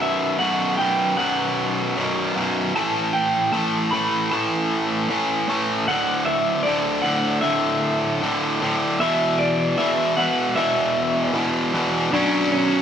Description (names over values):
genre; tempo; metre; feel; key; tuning
rock; 77 BPM; 4/4; straight; B minor; A4 = 440 Hz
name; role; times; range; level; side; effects
electric guitar through a small old amp; melody; 0.0-12.8 s; C#4 to B5; -23 LUFS; equal; slapback echo
overdriven electric guitar; riff; 0.0-12.8 s; B1 to C#4; -21 LUFS; equal; none
room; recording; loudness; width
moderate plate reverb, RT60 3.5 s; none; -19 LUFS; side -8 dB against mid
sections
0.0-12.1 A section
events
build-up 0.0-12.1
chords
0.0 B5; 2.7 A5; 5.9 D5; 9.0 E5; 12.1 Bsus2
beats
0.40 1.18 1.97 | 2.75 3.53 4.31 5.09 | 5.88 6.66 7.44 8.22 | 9.00 9.78 10.56 11.35 | 12.13